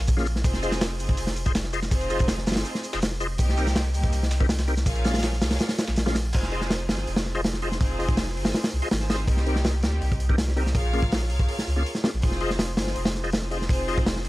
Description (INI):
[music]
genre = drum and bass, jungle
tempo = 163 BPM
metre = 4/4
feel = straight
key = F minor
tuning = A4 = 438 Hz
[part]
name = soft dub sub bass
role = bass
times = 0.0-14.3 s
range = F1 to D2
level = -27 LUFS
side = equal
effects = none
[part]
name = crunchy breakbeat drum kit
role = drums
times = 0.1-14.3 s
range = crash cymbal, hi-hat, kick drum, snare drum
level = -25 LUFS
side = equal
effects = none
[part]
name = dusty soul sampler-style drum kit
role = drums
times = 0.1-6.2 s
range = hi-hat, shaker, snare drum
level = -38 LUFS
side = right 2 dB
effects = high-pass filter on perc, high-pass filter on hats, high-pass filter on snare, high-pass filter on room
[part]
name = bright tonewheel organ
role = stabs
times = 0.2-14.0 s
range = Bb3 to Eb5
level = -33 LUFS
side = left 2 dB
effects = chorus vibrato, slow rotary speaker, vintage 12-bit sampler grit, dub echo
[part]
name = warm symphonic string section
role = sustained chords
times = 0.4-14.3 s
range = G3 to F5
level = -33 LUFS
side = equal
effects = none
[sound]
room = studio reverb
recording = vinyl crackle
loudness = -22 LUFS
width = side -18 dB against mid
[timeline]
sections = 0.0-6.3 A section; 6.3-14.3 A section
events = drop 0.0-6.3, 6.3-14.3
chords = 0.4 Fm7; 3.4 Cm7; 4.9 Bbm7; 6.3 Fm7; 9.3 Cm7; 10.8 Bbm7; 12.2 Fm7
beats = 0.08 | 0.45 0.81 1.18 1.55 | 1.92 2.29 2.65 3.02 | 3.39 3.76 4.13 4.50 | 4.86 5.23 5.60 5.97 | 6.33 6.70 7.07 7.44 | 7.81 8.18 8.54 8.91 | 9.28 9.65 10.02 10.38 | 10.75 11.12 11.49 11.86 | 12.22 12.59 12.96 13.33 | 13.70 14.07